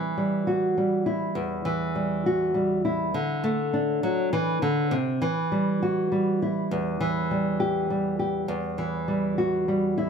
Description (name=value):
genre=folk, solo fingerstyle acoustic guitar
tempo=67 BPM (dotted quarters)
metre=6/8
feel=straight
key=E minor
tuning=A4 = 441 Hz
part: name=nylon-string guitar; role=solo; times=0.0-10.1 s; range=E2 to G4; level=-23 LUFS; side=equal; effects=none
room=light reverb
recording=close, detailed microphones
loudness=-23 LUFS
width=side -6 dB against mid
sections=0.0-8.5 A section; 8.5-10.1 A section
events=none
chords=0.0 C (rootless); 3.1 Dadd9; 4.9 C; 6.7 Em; 8.5 Emadd9